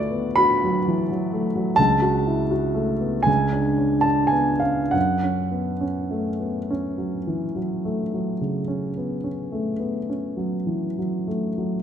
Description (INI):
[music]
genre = classical, romantic nocturne for solo piano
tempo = 33-44 BPM (dotted quarters)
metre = 12/8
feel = rubato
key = F# minor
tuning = A4 = 439 Hz
[part]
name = dark grand piano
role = solo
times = 0.0-11.8 s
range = C#2 to B5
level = -21 LUFS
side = equal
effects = none
[sound]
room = moderate scoring stage reverb, RT60 1.5 s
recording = none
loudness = -21 LUFS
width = side -8 dB against mid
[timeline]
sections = 0.0-11.8 A section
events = none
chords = 0.0 D6; 1.8 F#m/C#; 3.3 C#5; 4.9 F#m